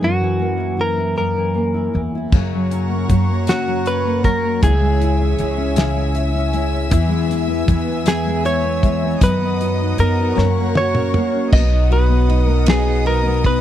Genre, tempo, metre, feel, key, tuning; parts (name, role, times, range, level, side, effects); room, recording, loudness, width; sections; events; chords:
six-eight pop ballad; 52 BPM (dotted quarters); 6/8; straight; B major; A4 = 440 Hz
direct-recorded clean electric guitar; melody; 0.0-13.6 s; F#4 to D#5; -21 LUFS; equal
nylon-string guitar; accompaniment; 0.0-13.6 s; F#2 to F#4; -22 LUFS; equal; double-tracked left and right
upright bass; bass; 0.0-13.6 s; B1 to F#2; -19 LUFS; equal
warm studio string section; sustained chords; 2.3-13.6 s; B3 to E6; -27 LUFS; equal
fingerpicked steel-string acoustic guitar; arpeggios; 2.3-13.6 s; F#2 to G#4; -26 LUFS; left 15 dB
damped 70s drum kit; drums; 2.3-13.6 s; crash cymbal, hi-hat, kick drum, ride cymbal, snare drum, toms; -17 LUFS; equal
little or no reverb; dry, close 1970s-style studio recording; -15 LUFS; side -11 dB against mid
0.0-2.3 A section; 2.3-11.5 B section; 11.5-13.6 C section
drum fill 10.4-11.5
0.0 F#7; 2.3 F#; 4.6 C#m; 6.9 E; 9.2 B/F#; 10.4 F#; 11.5 B